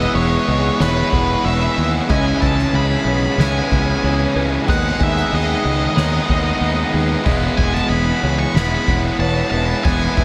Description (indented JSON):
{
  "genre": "post-rock",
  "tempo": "93 BPM",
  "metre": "4/4",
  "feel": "straight",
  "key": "E major",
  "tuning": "A4 = 438 Hz",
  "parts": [
    { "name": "octave-fuzz lead guitar", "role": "melody", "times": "0.0-10.2 s", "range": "B4 to C#6", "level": "-25 LUFS", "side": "equal", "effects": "distortion, diffuse ambient delay" },
    { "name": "phased analog pad", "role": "sustained chords", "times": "0.0-10.2 s", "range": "C#3 to B4", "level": "-34 LUFS", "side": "equal", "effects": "none" },
    { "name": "felt-muted upright piano", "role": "arpeggios", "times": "0.0-10.2 s", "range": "B4 to G#5", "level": "-32 LUFS", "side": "equal", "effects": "subtle chorus, diffuse ambient delay" },
    { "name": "twelve-string electric guitar", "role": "arpeggios", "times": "0.0-10.2 s", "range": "E2 to G#4", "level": "-28 LUFS", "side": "equal", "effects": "analog chorus, diffuse ambient delay" },
    { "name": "distorted electric guitar", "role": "riff", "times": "0.0-10.2 s", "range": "C#3 to E4", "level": "-23 LUFS", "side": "equal", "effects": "overdrive" },
    { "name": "fingered electric bass", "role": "bass", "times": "0.0-10.2 s", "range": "E1 to D#2", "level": "-23 LUFS", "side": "equal", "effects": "none" },
    { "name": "soft-mallet drum kit", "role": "drums", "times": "0.0-10.2 s", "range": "crash cymbal, kick drum, ride cymbal, snare drum", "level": "-24 LUFS", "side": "equal", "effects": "none" }
  ],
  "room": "moderate huge ambient reverb, RT60 7.6 s",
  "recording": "dreamy mix soaked in reverb",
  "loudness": "-17 LUFS",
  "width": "mono",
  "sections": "0.0-10.2 A section",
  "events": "none",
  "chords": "0.0 E; 2.1 C#m7; 4.7 G#m; 7.3 E"
}